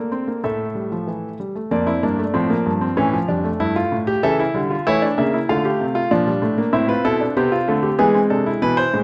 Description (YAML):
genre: classical, baroque-style 4-part fugue for grand piano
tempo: 96 BPM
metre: 4/4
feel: straight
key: D minor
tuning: A4 = 438 Hz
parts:
  - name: warm concert grand piano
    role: solo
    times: 0.0-9.0 s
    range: F2 to F5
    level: -20 LUFS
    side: equal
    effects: none
room: moderate recital hall reverb, RT60 1.3 s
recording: none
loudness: -20 LUFS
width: mono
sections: 0.0-1.7 A section; 1.7-9.0 B section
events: none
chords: 0.4 A5; 1.7 Dm/F; 3.0 A; 4.2 A7/C#; 5.5 Dm; 6.7 Am; 8.0 E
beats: 0.44 1.08 | 1.72 2.35 2.98 3.61 | 4.24 4.87 5.49 6.12 | 6.74 7.36 7.99 8.62